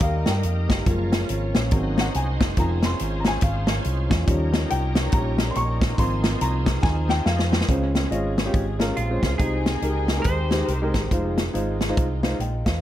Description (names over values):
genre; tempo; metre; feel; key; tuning
uptempo gospel; 140 BPM; 4/4; swing 61% on 8ths; Ab major; A4 = 436 Hz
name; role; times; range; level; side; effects
warm upright piano; accompaniment; 0.0-12.8 s; C3 to Db6; -27 LUFS; left 1 dB; analog delay
bright tonewheel organ; sustained chords; 0.0-7.7 s; F3 to C5; -34 LUFS; right 2 dB; slow rotary speaker, overdrive, chorus vibrato
warm studio string section; sustained chords; 0.0-12.8 s; Db3 to G5; -36 LUFS; equal; none
fingered electric bass; bass; 0.0-12.8 s; F1 to G2; -25 LUFS; equal; none
natural country drum kit; drums; 0.0-12.7 s; hi-hat, kick drum, snare drum; -24 LUFS; equal; analog delay
clean electric guitar; melody; 9.0-10.9 s; F4 to C5; -33 LUFS; right 4 dB; analog delay
warm chamber string section; melody; 9.0-11.1 s; Ab3 to C5; -32 LUFS; left 4 dB; analog delay
room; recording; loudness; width
light reverb, small room ambience; echo-heavy mix; -20 LUFS; side -12 dB against mid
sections
0.0-7.7 A section; 7.7-12.8 B section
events
upright piano solo 0.0-7.7; drum fill 6.8-7.7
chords
0.0 Eb; 0.9 Gbmaj7; 1.7 Ab7; 2.6 Dbmaj7/F; 4.3 Eb7; 6.0 Ab6; 7.7 Dbmaj7; 9.4 Abmaj7/C; 11.1 Fm7